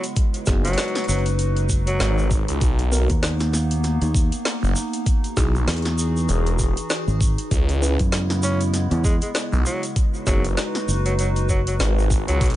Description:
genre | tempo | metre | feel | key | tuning
glitch hop | 98 BPM | 4/4 | swing 57% on 16ths | unclear | A4 = 440 Hz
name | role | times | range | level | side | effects
raspy tenor saxophone | melody | 0.0-2.3, 8.4-12.5 s | F#3 to C#4 | -29 LUFS | equal | vintage 12-bit sampler grit, dub echo
warbly tape-like pad | sustained chords | 0.0-12.6 s | C#3 to B4 | -28 LUFS | equal | chorus, built-in reverb, sidechain pumping
drum and bass drum kit | drums | 0.0-12.5 s | hi-hat, snare drum | -27 LUFS | equal | overdrive, small room ambience
tube shaker | percussion | 0.0-12.6 s | none | -33 LUFS | right 2 dB | none
electronic kick drum | drums | 0.2-12.6 s | none | -21 LUFS | equal | overdrive, small room ambience
mellow tine electric piano | stabs | 0.5-10.4 s | B3 to B4 | -31 LUFS | equal | sidechain pumping, dub echo
phased detuned saw bass | bass | 0.5-12.6 s | E1 to C#2 | -20 LUFS | equal | phaser, overdrive
fingered electric bass | bass | 1.1-11.8 s | F#1 to F#2 | -21 LUFS | equal | none
room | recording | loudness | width
little or no reverb | nothing above 10.3 kHz | -18 LUFS | side -14 dB against mid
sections
0.0-12.6 A section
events
none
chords
0.2 G#m7; 2.6 Bmaj7; 5.1 Emaj9; 7.5 C#m7; 10.0 G#m7

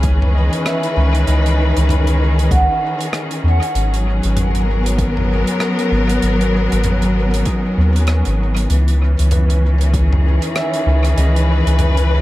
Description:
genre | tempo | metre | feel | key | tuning
ambient dub | 97 BPM | 4/4 | swing 59% on 16ths | unclear | A4 = 439 Hz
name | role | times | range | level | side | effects
warm symphonic string section | sustained chords | 0.0-12.2 s | D#3 to B4 | -19 LUFS | left 1 dB | none
soft dub sub bass | bass | 0.0-12.2 s | G#1 to E2 | -14 LUFS | equal | tube saturation
electronic kick drum | drums | 0.0-10.1 s | none | -21 LUFS | equal | none
tight metal drum kit | drums | 0.0-12.1 s | hi-hat, rim click, toms | -26 LUFS | equal | dub echo
concert harp | arpeggios | 0.3-12.2 s | C#4 to F#5 | -25 LUFS | right 2 dB | analog delay
room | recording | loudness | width
small room ambience | echo-heavy mix, vinyl crackle | -13 LUFS | side -16 dB against mid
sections
0.0-12.2 A section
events
none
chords
0.0 C#m9; 3.7 G#m11; 8.7 C#m9

